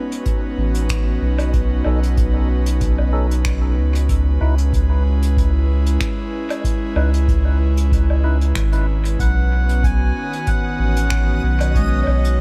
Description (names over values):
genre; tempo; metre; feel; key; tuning
ambient dub; 94 BPM; 4/4; swing 54% on 16ths; unclear; A4 = 440 Hz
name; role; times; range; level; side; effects
airy breathy pad; sustained chords; 0.0-12.4 s; D#3 to B4; -28 LUFS; equal; chorus
jazz brush drum kit; drums; 0.1-12.4 s; finger snaps, hi-hat, woodblock; -32 LUFS; equal; dub echo
electronic kick drum; drums; 0.3-11.9 s; none; -24 LUFS; equal; none
round analog bass; bass; 0.6-12.4 s; G#1 to C#2; -19 LUFS; equal; none
tonewheel organ; stabs; 1.9-8.4 s; C#4 to B4; -34 LUFS; equal; slow rotary speaker, dub echo
melodica; melody; 9.2-12.4 s; D#5 to G#5; -28 LUFS; equal; dub echo
backwards swelling texture; texture; 9.9-12.4 s; C#4 to D#6; -35 LUFS; equal; built-in reverb
buzzing kalimba; arpeggios; 11.8-12.4 s; G#3 to C#5; -34 LUFS; equal; tape echo
room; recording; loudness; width
small room reverb; none; -18 LUFS; mono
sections
0.0-12.4 A section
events
none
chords
0.0 B9; 4.1 C#m9; 9.2 B9